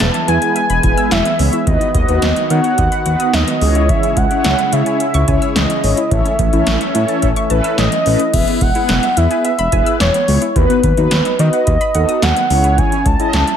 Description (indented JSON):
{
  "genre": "synth-pop",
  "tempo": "108 BPM",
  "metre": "4/4",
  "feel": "straight",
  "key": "E major",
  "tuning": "A4 = 443 Hz",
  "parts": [
    { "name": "warm velvety synth lead", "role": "melody", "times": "0.0-13.6 s", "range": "B4 to A5", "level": "-17 LUFS", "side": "right 1 dB", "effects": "chorus" },
    { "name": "mellow synth brass", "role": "accompaniment", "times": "0.0-13.4 s", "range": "B3 to D#5", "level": "-20 LUFS", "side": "left 2 dB", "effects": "chorus, phaser" },
    { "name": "lush unison pad", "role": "sustained chords", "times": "0.0-8.3 s", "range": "C#3 to F#4", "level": "-23 LUFS", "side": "right 1 dB", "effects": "chorus" },
    { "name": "soft round pluck", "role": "arpeggios", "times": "0.0-13.6 s", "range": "D#3 to E6", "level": "-23 LUFS", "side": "right 2 dB", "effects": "chorus, ping-pong delay" },
    { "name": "smooth synth bass", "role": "bass", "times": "0.0-13.4 s", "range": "E1 to D#3", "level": "-16 LUFS", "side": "equal", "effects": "none" },
    { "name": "electro analog drum machine", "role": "drums", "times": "0.0-13.6 s", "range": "crash cymbal, hi-hat, kick drum, snare drum", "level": "-18 LUFS", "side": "equal", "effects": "gated reverb" }
  ],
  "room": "light reverb",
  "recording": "none",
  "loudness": "-12 LUFS",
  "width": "side -8 dB against mid",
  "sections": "0.0-8.3 A section; 8.3-13.6 A section",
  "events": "none",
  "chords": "0.0 E; 1.7 B/D#; 3.6 C#m; 6.1 A; 8.3 E; 10.6 B/D#; 12.5 C#m"
}